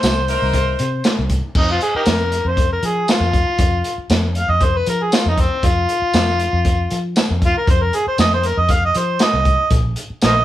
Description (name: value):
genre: straight-eighth soul blues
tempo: 118 BPM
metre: 4/4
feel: straight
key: F minor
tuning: A4 = 441 Hz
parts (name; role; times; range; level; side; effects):
- overdriven harmonica; melody; 0.0-10.4 s; C4 to F5; -18 LUFS; equal; none
- clear horn section; sustained chords; 0.0-0.8 s; Bb3 to Bb4; -25 LUFS; left 3 dB; none
- vintage muted fingered electric bass; bass; 0.0-10.4 s; Bb1 to F3; -20 LUFS; equal; none
- crunchy breakbeat drum kit; drums; 0.0-10.3 s; crash cymbal, hi-hat, kick drum, snare drum, tambourine; -18 LUFS; equal; none
room: light reverb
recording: band playing live in one room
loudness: -15 LUFS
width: side -13 dB against mid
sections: 0.0-1.6 A section; 1.6-10.4 B section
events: harmonica solo 1.6-10.4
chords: 0.0 C7#9; 1.6 F5; 9.7 Bbsus4